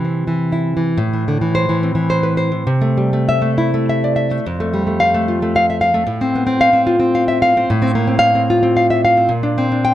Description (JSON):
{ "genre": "romantic piece for solo classical guitar", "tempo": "82-114 BPM", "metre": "3/4", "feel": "rubato", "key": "A minor", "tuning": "A4 = 440 Hz", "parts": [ { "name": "nylon-string guitar", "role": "solo", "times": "0.0-9.9 s", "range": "F2 to G5", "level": "-14 LUFS", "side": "equal", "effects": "none" } ], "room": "light reverb", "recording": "close, detailed microphones", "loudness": "-13 LUFS", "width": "side -12 dB against mid", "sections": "1.0-9.9 A section", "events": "none", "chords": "0.0 C; 1.0 Am; 2.7 Am/C; 4.4 F; 6.1 F/A; 9.3 Gm/Bb" }